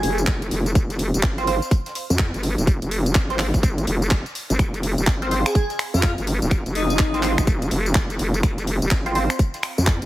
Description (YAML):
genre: bass house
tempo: 125 BPM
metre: 4/4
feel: swing 62% on 16ths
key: F minor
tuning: A4 = 439 Hz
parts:
  - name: airy dreamy lead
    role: melody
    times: 0.0-0.2, 5.5-7.4 s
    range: Eb4 to Ab4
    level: -27 LUFS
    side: equal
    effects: chorus, phaser, digital delay
  - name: vowel-sweep wobble bass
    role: bass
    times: 0.0-10.1 s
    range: Eb1 to F2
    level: -22 LUFS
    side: equal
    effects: chorus, overdrive, sidechain pumping
  - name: compact cocktail drum kit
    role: drums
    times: 0.0-10.0 s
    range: hi-hat, snare drum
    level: -39 LUFS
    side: left 4 dB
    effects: none
  - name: garage drum kit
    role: drums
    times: 0.0-10.1 s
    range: finger snaps, handclaps, hi-hat, tambourine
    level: -27 LUFS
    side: equal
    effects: small room ambience
  - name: electronic kick drum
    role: drums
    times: 0.3-10.0 s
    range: none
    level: -19 LUFS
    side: equal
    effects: small room ambience
  - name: band-passed chord stab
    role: stabs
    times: 1.4-9.4 s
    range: C4 to C5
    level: -27 LUFS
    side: right 2 dB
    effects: phaser, analog chorus, sidechain pumping, digital delay
room: little or no reverb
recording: heavily compressed radio sound, multiband compression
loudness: -19 LUFS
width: side -16 dB against mid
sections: 0.0-10.1 A section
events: none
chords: 0.0 F5